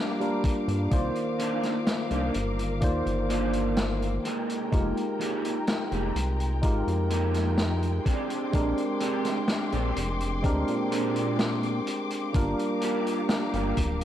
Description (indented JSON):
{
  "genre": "vaporwave",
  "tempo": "63 BPM",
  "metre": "4/4",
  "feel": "straight",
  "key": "F dorian",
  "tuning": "A4 = 440 Hz",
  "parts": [
    { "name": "tine electric piano", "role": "accompaniment", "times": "0.0-14.0 s", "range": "Eb3 to D5", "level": "-29 LUFS", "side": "equal", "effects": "analog chorus, tape echo" },
    { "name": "muted studio string section", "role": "sustained chords", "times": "0.0-14.0 s", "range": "Ab3 to D6", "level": "-36 LUFS", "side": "left 3 dB", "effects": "none" },
    { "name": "vintage drum kit", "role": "drums", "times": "0.2-14.0 s", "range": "hi-hat, snare drum", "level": "-32 LUFS", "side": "equal", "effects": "gated reverb" },
    { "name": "electric guitar at the edge of break-up", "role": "riff", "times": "0.4-14.0 s", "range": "Ab3 to G4", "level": "-33 LUFS", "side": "right 2 dB", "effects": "ensemble chorus, tape echo" },
    { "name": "electronic kick drum", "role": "drums", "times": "0.4-14.0 s", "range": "none", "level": "-25 LUFS", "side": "equal", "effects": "none" },
    { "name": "chorused synth bass", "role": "bass", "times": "0.7-14.0 s", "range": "D1 to Bb2", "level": "-29 LUFS", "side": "equal", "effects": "tube saturation" }
  ],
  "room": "light reverb, small room ambience",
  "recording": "none",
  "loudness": "-25 LUFS",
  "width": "side -11 dB against mid",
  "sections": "0.0-14.0 A section",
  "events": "none",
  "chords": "0.0 Gm7; 0.9 Cm11; 4.2 Fm11; 8.1 Bb13; 12.3 Gm7"
}